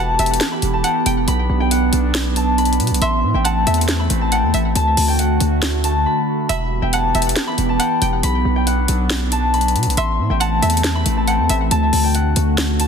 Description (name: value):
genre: hip hop, trap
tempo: 138 BPM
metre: 4/4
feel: half-time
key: E minor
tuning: A4 = 439 Hz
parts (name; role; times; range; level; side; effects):
- concert harp; melody; 0.0-12.9 s; A4 to C6; -21 LUFS; left 3 dB; ping-pong delay
- string-like resonator pluck; second line; 0.0-11.7 s; E5 to G5; -26 LUFS; right 3 dB; chorus, ping-pong delay
- warbly tape-like pad; sustained chords; 0.0-12.9 s; D3 to G4; -21 LUFS; right 2 dB; chorus, built-in reverb
- distorted 808-style bass; bass; 0.0-12.9 s; E1 to B2; -19 LUFS; equal; distortion
- trap drum kit; drums; 0.2-12.9 s; hi-hat, snare drum; -22 LUFS; left 1 dB; none
room: digital ambience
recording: dense, heavily limited modern master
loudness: -15 LUFS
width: side -6 dB against mid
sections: 0.0-12.9 A section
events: drums muted 6.1-6.5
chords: 0.0 Em; 1.3 Bm; 3.0 Am; 4.8 D; 6.5 Em; 8.2 Bm; 10.0 Am; 11.7 D